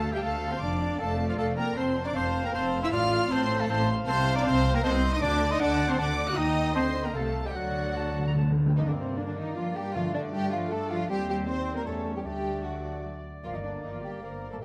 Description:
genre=quick classical-period movement for symphony orchestra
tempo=155 BPM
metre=3/4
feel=straight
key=G minor from 4.1 s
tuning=A4 = 440 Hz
part: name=rich studio violin section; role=melody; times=0.0-14.6 s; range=Bb4 to F#6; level=-40 LUFS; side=equal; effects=none
part: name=clear clarinet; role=second line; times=0.0-14.6 s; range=Bb3 to Bb5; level=-39 LUFS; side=equal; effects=none
part: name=clear oboe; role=second line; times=0.0-14.6 s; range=F4 to F#5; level=-41 LUFS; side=equal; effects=none
part: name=mellow silver concert flute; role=second line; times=0.0-14.6 s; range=C5 to D6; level=-38 LUFS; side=equal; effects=none
part: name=rich studio viola section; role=accompaniment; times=0.0-14.6 s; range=F3 to C5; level=-36 LUFS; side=equal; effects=none
part: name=mellow French horn section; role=sustained chords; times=0.0-14.6 s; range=F3 to C5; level=-39 LUFS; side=equal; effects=none
part: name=bright trumpet section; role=stabs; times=0.0-8.4 s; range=F4 to F#5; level=-38 LUFS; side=equal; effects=none
part: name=warm studio cello section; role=bass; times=0.0-14.6 s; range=D2 to C4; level=-37 LUFS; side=equal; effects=none
part: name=warm studio double bass section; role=bass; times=0.0-14.6 s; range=F1 to G2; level=-36 LUFS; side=equal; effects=none
part: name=warm studio violin section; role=second line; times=0.1-14.6 s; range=C4 to F#5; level=-40 LUFS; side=equal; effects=none
part: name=timpani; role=percussion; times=7.6-10.5 s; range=G2 to D3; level=-32 LUFS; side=equal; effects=none
part: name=mellow bassoon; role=accompaniment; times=8.8-14.6 s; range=G3 to Bb3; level=-42 LUFS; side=equal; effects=none
room=moderate scoring stage reverb, RT60 1.6 s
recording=none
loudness=-28 LUFS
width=mono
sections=0.0-8.8 A section; 8.8-14.6 B section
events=timpani fill 7.6-8.8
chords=0.0 Dm; 0.6 F5; 2.9 F/A; 4.1 Cm13; 5.2 D; 6.4 Eb; 7.2 Fadd9/C; 7.6 D; 8.8 Gm; 9.9 Dm/G; 11.1 Cm/Eb; 11.9 A7/E; 12.3 D; 13.4 Gm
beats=0.23 | 0.61 1.00 1.39 | 1.77 2.16 2.55 | 2.93 3.32 3.70 | 4.08 4.46 4.84 | 5.22 5.61 5.99 | 6.38 6.76 7.15 | 7.56 7.97 8.38 | 8.78 9.17 9.56 | 9.95 10.33 10.71 | 11.10 11.48 11.86 | 12.26 12.65 13.05 | 13.45 13.84 14.23 | 14.62

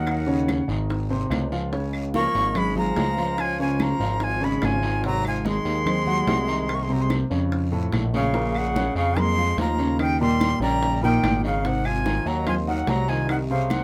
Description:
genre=Afro-Cuban jazz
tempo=145 BPM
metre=4/4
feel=straight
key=Ab mixolydian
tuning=A4 = 440 Hz
part: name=breathy bright jazz flute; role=melody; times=0.0-13.8 s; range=F5 to Db6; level=-29 LUFS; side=equal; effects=none
part: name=clear tenor saxophone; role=second line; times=0.0-13.8 s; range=Db3 to Bb3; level=-32 LUFS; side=equal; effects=none
part: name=warm grand piano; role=accompaniment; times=0.0-13.8 s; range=A2 to Db6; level=-29 LUFS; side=equal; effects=none
part: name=fat analog bass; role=bass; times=0.0-13.8 s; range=Ab1 to F2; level=-28 LUFS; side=equal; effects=none
part: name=bongos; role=percussion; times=0.1-13.8 s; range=none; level=-34 LUFS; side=equal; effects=none
part: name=claves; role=percussion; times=0.1-13.8 s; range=none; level=-40 LUFS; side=equal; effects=none
part: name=congas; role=percussion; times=0.1-13.8 s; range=none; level=-34 LUFS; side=equal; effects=none
part: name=guiro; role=percussion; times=0.1-13.8 s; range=none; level=-45 LUFS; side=equal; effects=none
room=moderate booth ambience, RT60 0.2 s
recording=none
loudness=-23 LUFS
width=mono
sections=0.0-13.8 A section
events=none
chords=0.1 Ebm7; 0.9 Ab6; 1.7 Db69; 5.0 Ab7; 6.7 Bbm11/C; 7.5 Faug; 8.3 Bbm7; 10.0 Eb6; 11.6 Ab6; 13.3 Ebm13/C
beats=| 0.07 0.48 0.90 1.31 | 1.73 2.14 2.55 2.97 | 3.38 3.80 4.21 4.62 | 5.04 5.45 5.87 6.28 | 6.69 7.11 7.52 7.93 | 8.34 8.76 9.17 9.58 | 9.99 10.41 10.82 11.23 | 11.64 12.06 12.47 12.88 | 13.29 13.71

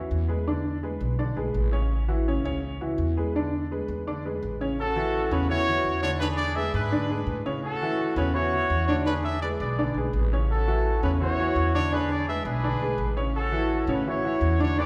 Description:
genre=latin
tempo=168 BPM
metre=4/4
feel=straight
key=A major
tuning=A4 = 440 Hz
part: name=clear upright piano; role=accompaniment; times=0.0-14.9 s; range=C#3 to D5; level=-30 LUFS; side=equal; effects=none
part: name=upright bass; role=bass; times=0.0-14.9 s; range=A1 to A2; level=-30 LUFS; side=equal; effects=none
part: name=mellow trumpet section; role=melody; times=4.8-14.9 s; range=C#4 to E5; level=-30 LUFS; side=equal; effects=none
room=wet recital hall reverb, RT60 1.6 s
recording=recorded in a church or concert hall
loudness=-26 LUFS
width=mono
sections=0.0-4.8 A section; 4.8-14.9 B section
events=none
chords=0.5 E7; 1.9 A6; 3.3 E7; 4.8 A6; 6.2 E7; 7.6 A6; 9.1 E7; 10.5 A6; 11.9 E7; 13.3 A6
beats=0.12 | 0.47 0.83 1.19 1.55 | 1.91 2.27 2.63 2.98 | 3.34 3.70 4.06 4.42 | 4.78 5.13 5.49 5.85 | 6.21 6.56 6.92 7.28 | 7.64 7.99 8.35 8.71 | 9.06 9.42 9.78 10.13 | 10.49 10.85 11.21 11.56 | 11.92 12.28 12.63 12.99 | 13.35 13.70 14.06 14.42 | 14.77

